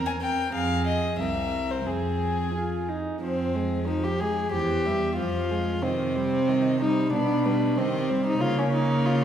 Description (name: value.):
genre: quick classical-period movement for string quartet.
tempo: 92 BPM.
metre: 2/4.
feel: straight.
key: F minor.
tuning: A4 = 442 Hz.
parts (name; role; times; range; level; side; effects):
warm violin; second line; 0.0-9.2 s; C4 to Bb4; -27 LUFS; equal; none.
warm viola; accompaniment; 0.0-9.2 s; Eb3 to F4; -31 LUFS; right 1 dB; none.
rich cello; bass; 0.0-9.2 s; C2 to Db3; -28 LUFS; right 2 dB; none.
warm violin; melody; 0.1-9.2 s; Ab4 to Ab5; -32 LUFS; left 4 dB; none.
room: wet recital hall reverb, RT60 1.3 s.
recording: heard from further back in the room.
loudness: -23 LUFS.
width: side -9 dB against mid.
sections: 0.0-3.2 A section; 3.2-9.2 A section.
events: none.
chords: 0.0 C7/E; 0.5 Fm; 1.2 C7; 1.9 Fm; 4.5 C/E; 5.2 Fm; 5.8 Cm; 7.1 G/B; 7.8 Cm; 8.4 Bbm/Db.